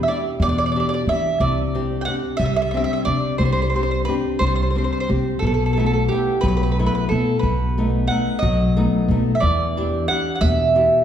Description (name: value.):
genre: italian folk, Italian serenade.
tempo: 60 BPM (dotted quarters).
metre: 6/8.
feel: straight.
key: E minor.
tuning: A4 = 438 Hz.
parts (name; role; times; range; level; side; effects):
mandolin; melody; 0.0-11.0 s; G4 to G5; -22 LUFS; right 2 dB; none.
flamenco guitar; accompaniment; 0.0-11.0 s; B2 to G4; -23 LUFS; left 2 dB; none.
upright bass; bass; 0.0-10.8 s; B1 to E3; -22 LUFS; equal; none.
room: wet recital hall reverb, RT60 1.5 s.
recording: heard from further back in the room.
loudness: -17 LUFS.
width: side -9 dB against mid.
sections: 0.0-11.0 A section.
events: none.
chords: 0.0 Em7; 1.4 Csus2; 5.4 B7sus4; 7.4 B7; 9.4 Em7.